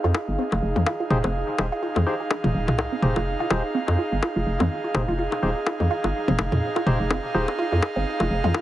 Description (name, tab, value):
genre	minimal techno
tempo	125 BPM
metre	4/4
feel	swing 57% on 16ths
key	F minor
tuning	A4 = 440 Hz
part	resonant blip pluck	riff	0.0-8.6 s	C4 to G4	-30 LUFS	right 2 dB	phaser, dub echo
part	hollow knocking FM bass	bass	0.0-8.5 s	Eb1 to F2	-24 LUFS	equal	none
part	airy breathy pad	texture	0.0-8.6 s	Eb4 to F5	-28 LUFS	right 2 dB	chorus
part	electronic bongos and toms	percussion	0.1-8.6 s	none	-26 LUFS	left 2 dB	dub echo
part	percussive organ stab	stabs	1.1-7.5 s	Eb4 to C5	-30 LUFS	left 2 dB	chorus, dub echo
room	moderate studio reverb, RT60 0.6 s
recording	heavily compressed radio sound, nothing above 10.7 kHz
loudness	-21 LUFS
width	side -14 dB against mid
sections	0.0-8.6 A section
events	none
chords	0.0 Fm7